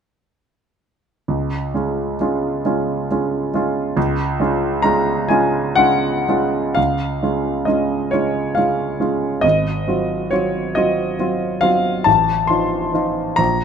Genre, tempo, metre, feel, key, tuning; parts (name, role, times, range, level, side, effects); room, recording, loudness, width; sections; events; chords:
classical, romantic nocturne for solo piano; 38-47 BPM (dotted quarters); 6/8; rubato; Db major; A4 = 442 Hz
clear concert grand piano; solo; 1.3-13.6 s; Ab1 to C6; -16 LUFS; equal
moderate stone room reverb, RT60 1.3 s; -16 LUFS; side -7 dB against mid
1.3-6.8 A section; 6.8-13.6 B section
1.3 Db; 9.4 Ab6; 12.1 F7/A